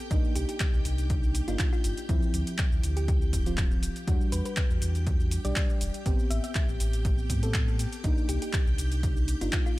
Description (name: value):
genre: deep house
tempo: 121 BPM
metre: 4/4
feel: swing 53% on 16ths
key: unclear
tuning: A4 = 440 Hz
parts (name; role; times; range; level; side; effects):
- mellow FM electric piano; stabs; 0.0-9.8 s; F3 to A4; -35 LUFS; equal; chorus, sidechain pumping, tape echo
- string machine, violins; texture; 0.0-9.8 s; G4 to G6; -43 LUFS; equal; ensemble chorus
- sub bass with octave; bass; 0.1-9.5 s; D1 to A2; -29 LUFS; equal; sidechain pumping
- deep house drum kit; drums; 0.1-9.8 s; handclaps, hi-hat, shaker; -35 LUFS; equal; none
- electronic kick drum; drums; 0.1-9.6 s; none; -27 LUFS; equal; none
- thumb-piano-like synth pluck; melody; 0.4-9.8 s; F4 to E5; -39 LUFS; equal; chorus, cassette tape, tape echo
room: little or no reverb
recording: none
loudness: -25 LUFS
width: side -18 dB against mid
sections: 0.0-9.8 A section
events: none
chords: 0.1 Cm9; 2.1 Dm9; 4.1 Em9; 6.1 Am9; 8.0 Cm9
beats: | 0.11 0.60 1.10 1.60 | 2.09 2.59 3.08 3.58 | 4.08 4.57 5.07 5.56 | 6.06 6.55 7.05 7.55 | 8.04 8.54 9.03 9.53